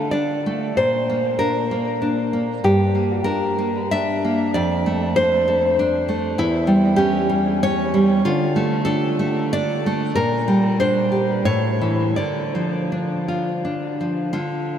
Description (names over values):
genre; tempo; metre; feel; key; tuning
romantic piece for solo classical guitar; 81-101 BPM; 3/4; rubato; D minor; A4 = 440 Hz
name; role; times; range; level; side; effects
nylon-string guitar; solo; 0.0-14.8 s; E2 to E5; -18 LUFS; equal; analog delay
room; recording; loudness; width
wet huge ambient reverb, RT60 8.2 s; dreamy mix soaked in reverb; -18 LUFS; side -9 dB against mid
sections
0.0-14.4 A section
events
none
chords
0.0 D5; 0.8 Bb; 2.6 Gm; 4.6 Dm/F; 6.4 C#dim/E; 8.2 Dm; 10.2 Gm/Bb; 11.5 A; 12.2 Dm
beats
0.13 | 0.77 1.40 2.02 | 2.63 3.25 3.92 | 4.55 5.18 5.79 | 6.38 6.98 7.64 | 8.25 8.86 9.54 | 10.17 10.80 11.46 | 12.17 12.91 13.65 | 14.36